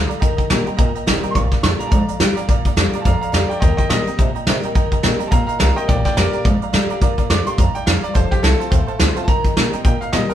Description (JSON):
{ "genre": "rockabilly", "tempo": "212 BPM", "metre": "4/4", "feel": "swing 58% on 8ths", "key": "Bb major", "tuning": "A4 = 441 Hz", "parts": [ { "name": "bright upright piano", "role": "melody", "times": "0.0-10.3 s", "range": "G4 to D6", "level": "-24 LUFS", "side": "right 2 dB", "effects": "none" }, { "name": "picked steel-string acoustic guitar", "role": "accompaniment", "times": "0.0-10.3 s", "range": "F2 to G4", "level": "-25 LUFS", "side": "left 4 dB", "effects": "none" }, { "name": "tack piano", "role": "accompaniment", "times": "0.0-10.3 s", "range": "C5 to Bb5", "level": "-27 LUFS", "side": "right 6 dB", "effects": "none" }, { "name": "upright bass", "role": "bass", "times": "0.0-10.3 s", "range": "F1 to C3", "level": "-21 LUFS", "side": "equal", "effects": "none" }, { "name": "soft brush drum kit", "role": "drums", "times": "0.1-10.3 s", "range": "hi-hat, kick drum, snare drum", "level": "-17 LUFS", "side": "equal", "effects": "none" } ], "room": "moderate studio reverb, RT60 0.8 s", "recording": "band playing live in one room", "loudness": "-15 LUFS", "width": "side -10 dB against mid", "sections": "0.0-10.3 A section", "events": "none", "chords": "0.2 Eb6; 1.4 Bb6; 3.6 Eb6; 5.9 Bb6; 8.1 F6; 9.3 Eb6", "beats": "| 0.22 0.51 0.79 1.07 | 1.35 1.64 1.92 2.21 | 2.49 2.77 3.05 3.34 | 3.62 3.90 4.19 4.47 | 4.75 5.04 5.32 5.60 | 5.88 6.17 6.45 6.73 | 7.02 7.30 7.58 7.86 | 8.15 8.43 8.71 9.00 | 9.28 9.56 9.85 10.13" }